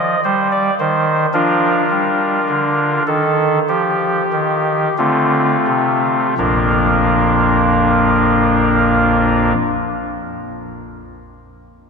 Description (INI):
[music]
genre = classical, chorale-style piece for pipe organ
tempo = 42-57 BPM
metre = 4/4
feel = rubato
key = Bb major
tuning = A4 = 440 Hz
[part]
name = chamber organ, soft reed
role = solo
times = 0.0-9.5 s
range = Bb1 to Eb5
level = -13 LUFS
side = equal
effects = none
[sound]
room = wet cathedral reverb, RT60 4.1 s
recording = none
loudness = -13 LUFS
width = side -5 dB against mid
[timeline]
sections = 0.0-6.4 A section; 6.4-11.9 B section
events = slowing down 0.0-6.4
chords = 0.0 Ebmaj13; 1.3 Bb/F; 3.7 F7; 6.4 Bb